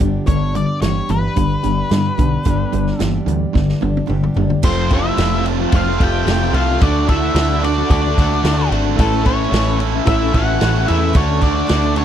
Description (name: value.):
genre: classic rock.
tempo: 110 BPM.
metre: 4/4.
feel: straight.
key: unclear.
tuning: A4 = 440 Hz.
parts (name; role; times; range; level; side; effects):
picked steel-string acoustic guitar; accompaniment; 0.0-12.0 s; F2 to G4; -26 LUFS; right 3 dB; none.
crunchy overdriven guitar; riff; 0.0-12.0 s; F2 to F#4; -22 LUFS; left 12 dB; harmonic tremolo.
crunchy overdriven guitar; riff; 0.0-12.0 s; F2 to F#4; -22 LUFS; right 12 dB; spring reverb.
overdriven picked electric bass; bass; 0.0-12.0 s; F1 to G2; -19 LUFS; equal; none.
vintage drum kit; drums; 0.0-12.0 s; crash cymbal, hi-hat, kick drum, ride cymbal, snare drum, toms; -19 LUFS; equal; none.
octave-fuzz lead guitar; melody; 0.3-12.0 s; A4 to G5; -23 LUFS; left 3 dB; distortion.
octave-fuzz lead guitar; second line; 4.6-12.0 s; A3 to G4; -25 LUFS; right 4 dB; distortion.
room: little or no reverb.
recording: dry, close 1970s-style studio recording.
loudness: -14 LUFS.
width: side -10 dB against mid.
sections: 0.0-4.6 A section; 4.6-12.0 B section.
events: drum fill 3.6-4.6.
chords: 0.0 G; 4.6 F; 6.8 D; 9.0 A; 11.2 D.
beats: | 0.28 0.82 1.37 1.92 | 2.46 3.01 3.55 4.10 | 4.64 5.19 5.73 6.28 | 6.82 7.36 7.90 8.45 | 8.99 9.53 10.07 10.61 | 11.16 11.70.